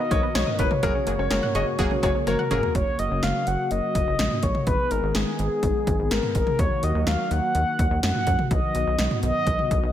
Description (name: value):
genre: synth-pop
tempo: 125 BPM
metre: 4/4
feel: straight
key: F# major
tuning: A4 = 440 Hz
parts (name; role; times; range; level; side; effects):
- mellow horn-like synth lead; melody; 0.0-9.9 s; G#4 to F#5; -26 LUFS; left 1 dB; chorus, ping-pong delay
- analog pluck; accompaniment; 0.0-2.7 s; A#3 to C#5; -30 LUFS; left 1 dB; chorus
- brassy analog pad; sustained chords; 0.0-9.9 s; C#3 to A#4; -30 LUFS; left 1 dB; chorus
- analog pluck; arpeggios; 0.0-2.7 s; F#3 to C#6; -33 LUFS; right 3 dB; chorus, ping-pong delay
- clear concert grand piano; second line; 0.1-2.6 s; A#4 to D#5; -31 LUFS; left 3 dB; ping-pong delay
- rubbery square bass; bass; 0.1-9.9 s; E#1 to F#2; -26 LUFS; equal; none
- punchy analog drum machine; drums; 0.1-9.8 s; hi-hat, kick drum, snare drum, toms; -25 LUFS; equal; gated reverb
room: light reverb, digital ambience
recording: none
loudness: -21 LUFS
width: side -11 dB against mid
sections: 0.0-2.8 A section; 2.8-9.9 B section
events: drum fill 2.3-2.8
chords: 0.0 Bmaj7; 0.8 F#add9; 2.8 F#; 4.7 G#m; 6.6 D#m; 8.5 B